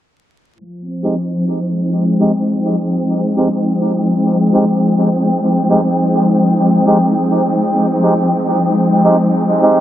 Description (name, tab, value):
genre	ambient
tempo	103 BPM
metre	4/4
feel	straight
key	F minor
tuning	A4 = 441 Hz
part	dark studio string section	sustained chords	0.6-9.8 s	F3 to G5	-13 LUFS	equal	low-pass filter
part	melodica	stabs	1.0-9.8 s	Ab3 to G4	-17 LUFS	right 2 dB	low-pass filter, dub echo
room	moderate spring reverb, RT60 2.0 s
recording	vinyl crackle, low-pass filter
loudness	-12 LUFS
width	side -12 dB against mid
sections	0.6-9.8 A section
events	filter sweep on string section 0.6-9.8; filter sweep on melodica 0.6-9.8; filter sweep 0.6-9.8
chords	0.6 Fm7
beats	| 0.60 1.18 1.76 2.34 | 2.93 3.51 4.09 4.67 | 5.26 5.84 6.42 7.00 | 7.59 8.17 8.75 9.34